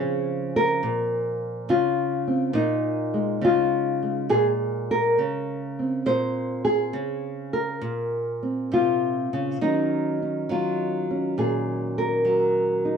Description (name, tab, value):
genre	solo jazz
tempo	68 BPM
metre	4/4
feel	swing 68% on 8ths, rubato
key	Bb minor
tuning	A4 = 441 Hz
part	nylon-string guitar	solo	0.0-13.0 s	Bb2 to C5	-22 LUFS	equal	none
room	moderate studio reverb, RT60 0.8 s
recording	dark, warm production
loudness	-22 LUFS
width	side -6 dB against mid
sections	0.0-13.0 A section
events	none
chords	0.0 Bbm9; 9.6 Ebm7